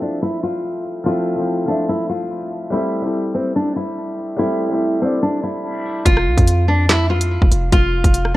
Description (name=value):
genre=hip hop, drill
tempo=144 BPM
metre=4/4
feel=half-time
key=unclear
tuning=A4 = 440 Hz
part: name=nylon-string guitar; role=melody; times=0.0-8.4 s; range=C4 to F4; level=-20 LUFS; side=equal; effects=low-pass filter, ping-pong delay
part: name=clear concert grand piano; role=accompaniment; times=0.0-6.1 s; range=F3 to E5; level=-22 LUFS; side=left 1 dB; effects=low-pass filter
part: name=hard-hitting 808-style bass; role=bass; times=6.1-8.4 s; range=F1 to F2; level=-17 LUFS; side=equal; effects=none
part: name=drill drum kit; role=drums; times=6.1-8.3 s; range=handclaps, hi-hat, kick drum, rim click, snare drum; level=-14 LUFS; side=equal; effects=none
room=light reverb, studio ambience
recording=worn, warbling old tape, cassette tape, warbly pitch drift, low-pass filter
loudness=-16 LUFS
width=side -17 dB against mid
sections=0.0-6.1 A section; 6.1-8.4 B section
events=filter sweep 0.0-6.1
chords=0.0 Fmaj7; 2.7 Am7; 6.1 F5